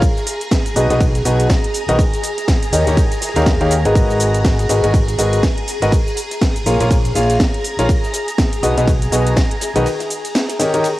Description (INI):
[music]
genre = piano house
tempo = 122 BPM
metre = 4/4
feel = swing 59% on 16ths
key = unclear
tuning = A4 = 440 Hz
[part]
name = string machine, violins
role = sustained chords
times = 0.0-11.0 s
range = G#4 to A#5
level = -24 LUFS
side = equal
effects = ensemble chorus, sidechain pumping
[part]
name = electronic kick drum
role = drums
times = 0.0-9.5 s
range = none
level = -16 LUFS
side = equal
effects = none
[part]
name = house drum kit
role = drums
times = 0.0-11.0 s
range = hi-hat, ride cymbal, shaker, snare drum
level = -23 LUFS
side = equal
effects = none
[part]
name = modern studio drum kit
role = drums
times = 0.0-11.0 s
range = hi-hat, ride cymbal, snare drum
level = -35 LUFS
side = equal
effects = none
[part]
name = clear grand piano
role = riff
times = 0.8-10.9 s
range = B2 to E#5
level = -18 LUFS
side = left 1 dB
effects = sidechain pumping, tape echo
[part]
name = overdriven fingered electric bass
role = bass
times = 0.8-9.8 s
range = G#1 to D#2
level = -18 LUFS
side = equal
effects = sidechain pumping
[sound]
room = light reverb, studio ambience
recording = home recording on cassette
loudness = -14 LUFS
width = side -16 dB against mid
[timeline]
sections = 0.0-11.0 A section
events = break 9.9-11.0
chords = 0.0 B6; 2.0 D#7; 4.0 G#m9; 5.9 A#m7; 7.9 B6; 9.9 D#7